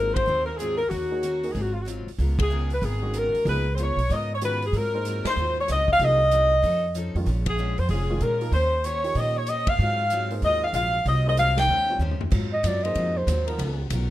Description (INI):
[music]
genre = jazz, big band swing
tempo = 189 BPM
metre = 4/4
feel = swing 64% on 8ths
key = Ab mixolydian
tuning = A4 = 440 Hz
[part]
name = warm saxophone section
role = melody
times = 0.0-12.0 s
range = F4 to G5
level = -23 LUFS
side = equal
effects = plate reverb
[part]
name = picked steel-string acoustic guitar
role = accompaniment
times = 0.0-14.1 s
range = Ab2 to C5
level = -36 LUFS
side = left 4 dB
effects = none
[part]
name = warm baby grand piano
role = accompaniment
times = 0.0-13.3 s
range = Eb3 to Db5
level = -35 LUFS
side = right 2 dB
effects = plate reverb
[part]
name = upright bass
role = bass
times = 0.0-14.1 s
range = F1 to Bb2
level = -26 LUFS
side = right 1 dB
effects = none
[part]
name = swinging big-band drum kit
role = drums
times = 0.2-14.0 s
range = crash cymbal, hi-hat, kick drum, ride cymbal, snare drum, toms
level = -32 LUFS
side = equal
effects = none
[part]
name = breathy clarinet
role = melody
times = 12.5-13.5 s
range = C5 to Eb5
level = -26 LUFS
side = right 1 dB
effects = plate reverb
[part]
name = warm trombone section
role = sustained chords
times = 13.5-13.9 s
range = F3 to Bb4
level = -34 LUFS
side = right 2 dB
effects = plate reverb
[sound]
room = light reverb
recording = rough home demo mix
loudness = -21 LUFS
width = side -14 dB against mid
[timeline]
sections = 0.0-12.3 A section; 12.3-14.1 B section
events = band accent 0.1, 2.3, 5.2, 7.4, 9.6, 11.5; drum fill 12.0-12.3; clarinet solo 12.3-14.1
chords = 0.0 Ab13; 0.9 Ebm7; 1.5 Ab6; 2.2 Db13; 4.7 Ab13; 6.0 Cm7b5; 6.6 F7alt; 7.3 Bbm7; 8.5 Eb13; 9.8 Ab13; 11.7 Eb13; 12.3 Ab13; 13.6 Db13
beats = 0.28 0.59 | 0.91 1.23 1.55 1.86 | 2.18 2.50 2.82 3.14 | 3.45 3.77 4.09 4.41 | 4.72 5.04 5.36 5.67 | 5.99 6.31 6.63 6.94 | 7.26 7.58 7.89 8.21 | 8.53 8.84 9.16 9.48 | 9.79 10.11 10.43 10.74 | 11.06 11.38 11.70 12.01 | 12.33 12.65 12.96 13.28 | 13.60 13.91